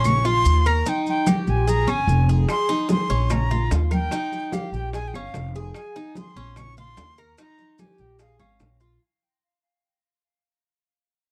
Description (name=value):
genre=latin, Cuban son and guajira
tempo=147 BPM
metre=4/4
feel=straight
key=unclear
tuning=A4 = 439 Hz
part: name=breathy bright jazz flute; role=melody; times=0.0-8.8 s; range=F5 to Db6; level=-28 LUFS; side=equal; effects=tape echo
part: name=Cuban tres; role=arpeggios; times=0.0-9.0 s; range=Db4 to Bb4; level=-30 LUFS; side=equal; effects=none
part: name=upright bass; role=bass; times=0.0-9.0 s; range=F1 to Eb2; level=-23 LUFS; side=equal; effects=none
part: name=maracas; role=percussion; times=0.0-9.0 s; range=none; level=-42 LUFS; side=equal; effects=none
part: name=claves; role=percussion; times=0.1-8.6 s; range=none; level=-38 LUFS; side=equal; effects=none
part: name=congas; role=percussion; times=0.1-9.0 s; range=none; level=-29 LUFS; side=equal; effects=none
part: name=bongos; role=percussion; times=2.5-8.8 s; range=none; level=-37 LUFS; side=equal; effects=none
room=little or no reverb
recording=dry, close 1970s-style studio recording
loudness=-21 LUFS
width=mono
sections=0.0-9.0 A section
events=fade-out 0.0-9.0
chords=0.0 Bbm; 0.9 Eb; 1.7 Bbm7; 2.5 Bbm11; 3.3 Bbm; 4.1 Eb; 4.9 Bbm7; 5.8 Bbm11; 6.6 Bbm; 7.4 Eb; 8.2 Bbm7